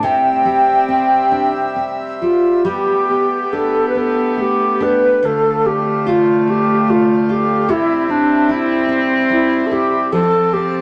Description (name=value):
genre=celtic folk, Celtic slow air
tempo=68-75 BPM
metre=3/4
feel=rubato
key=G mixolydian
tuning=A4 = 441 Hz
part: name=baroque flute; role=melody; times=0.0-10.8 s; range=D4 to G5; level=-17 LUFS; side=equal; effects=none
part: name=dark cello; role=second line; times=0.0-10.8 s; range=A3 to C4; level=-23 LUFS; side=equal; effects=none
part: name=nylon-string guitar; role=accompaniment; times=0.0-10.8 s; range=D2 to F4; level=-25 LUFS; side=equal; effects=none
part: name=accordion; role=sustained chords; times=0.0-10.8 s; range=C3 to E5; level=-29 LUFS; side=equal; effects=none
room=wet large studio reverb, RT60 1.4 s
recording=none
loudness=-15 LUFS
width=mono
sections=0.0-2.7 A section; 2.7-10.8 B section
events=none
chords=0.0 C; 2.7 Gadd9; 5.2 Dm7; 7.7 C; 10.1 F